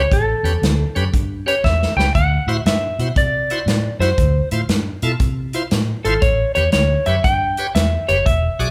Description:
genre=electric blues shuffle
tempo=118 BPM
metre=4/4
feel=swing 65% on 8ths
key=A mixolydian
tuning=A4 = 439 Hz
part: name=clean lap steel guitar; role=melody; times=0.0-8.7 s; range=A4 to G5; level=-22 LUFS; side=equal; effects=none
part: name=bright tonewheel organ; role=accompaniment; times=0.0-8.7 s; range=C#4 to D5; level=-28 LUFS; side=equal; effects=slow rotary speaker, overdrive
part: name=vintage muted fingered electric bass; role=bass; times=0.0-8.7 s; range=E1 to C3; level=-22 LUFS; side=equal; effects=none
part: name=natural country drum kit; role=drums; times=0.1-8.7 s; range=hi-hat, kick drum, snare drum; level=-23 LUFS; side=equal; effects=none
room=moderate large studio reverb, RT60 1.2 s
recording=band playing live in one room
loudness=-18 LUFS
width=mono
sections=0.0-8.7 A section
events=drum fill 1.6-2.1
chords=0.0 A7; 2.1 D7; 4.2 Dm7 (rootless); 6.2 A7 (rootless)

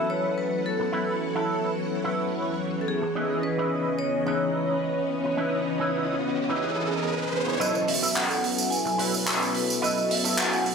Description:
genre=nu-disco, nu disco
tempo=108 BPM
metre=4/4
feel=straight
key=unclear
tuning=A4 = 440 Hz
part: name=vibraphone with medium mallets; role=melody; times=0.0-10.7 s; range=G#4 to G#5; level=-30 LUFS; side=equal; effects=dub echo
part: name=mellow synth brass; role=accompaniment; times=0.0-10.7 s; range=E3 to D#5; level=-30 LUFS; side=left 1 dB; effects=chorus, ping-pong delay
part: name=string machine, full ensemble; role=sustained chords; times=0.0-10.7 s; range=E3 to D#6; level=-31 LUFS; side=left 1 dB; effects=phaser, ensemble chorus
part: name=electric guitar with an envelope filter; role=riff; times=0.0-10.6 s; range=C#4 to B4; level=-32 LUFS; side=right 3 dB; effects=analog chorus, low-pass filter
part: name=riser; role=sound effects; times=4.8-7.6 s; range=none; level=-33 LUFS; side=left 1 dB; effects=none
part: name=damped 70s drum kit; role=drums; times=7.6-10.7 s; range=handclaps, hi-hat, tambourine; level=-26 LUFS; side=right 2 dB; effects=high-pass filter on hats, low-pass filter on hats, high-pass filter on perc, low-pass filter on perc, high-pass filter on snare, low-pass filter on snare, high-pass filter on room, low-pass filter on room
room=moderate plate reverb, RT60 1.6 s, small room ambience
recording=none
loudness=-23 LUFS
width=side -5 dB against mid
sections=0.0-7.6 A section; 7.6-10.7 B section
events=riser 4.8-7.6; build-up 7.6-10.7; filter sweep on string machine 7.6-10.7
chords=0.0 B7sus4; 3.2 C#m9; 7.6 B7sus4

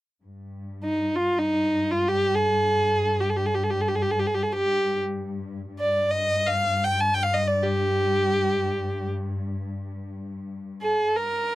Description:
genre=arabic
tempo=free time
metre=none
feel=none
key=G maqam bayati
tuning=A4 = 440 Hz
part: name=rich studio cello section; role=drone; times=0.2-11.2 s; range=G2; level=-30 LUFS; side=left 2 dB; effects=none
part: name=warm violin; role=melody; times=0.8-11.6 s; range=Eb4 to A5-39c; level=-22 LUFS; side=right 1 dB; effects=none
room=little or no reverb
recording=dry, close 1970s-style studio recording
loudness=-22 LUFS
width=side -16 dB against mid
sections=0.2-11.2 A section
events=none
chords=none

